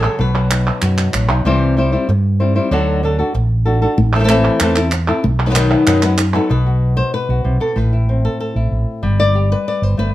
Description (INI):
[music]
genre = flamenco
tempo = 190 BPM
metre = 4/4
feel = straight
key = unclear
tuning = A4 = 443 Hz
[part]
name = flamenco guitar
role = melody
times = 0.0-10.1 s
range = A2 to D5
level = -17 LUFS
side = left 2 dB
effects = none
[part]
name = mellow fretless electric bass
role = bass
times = 0.0-10.1 s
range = G1 to G2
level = -16 LUFS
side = right 1 dB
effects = none
[part]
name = palmas hand claps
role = percussion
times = 0.0-1.4, 4.1-6.5 s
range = none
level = -21 LUFS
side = right 3 dB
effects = none
[sound]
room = light reverb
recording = none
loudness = -13 LUFS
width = side -14 dB against mid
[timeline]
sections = 0.0-1.5 A section; 1.5-6.5 B section; 6.5-10.1 C section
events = none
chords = 0.2 B; 1.5 C; 2.7 D; 4.0 Am; 5.2 B; 6.5 B5; 7.8 Am; 9.0 G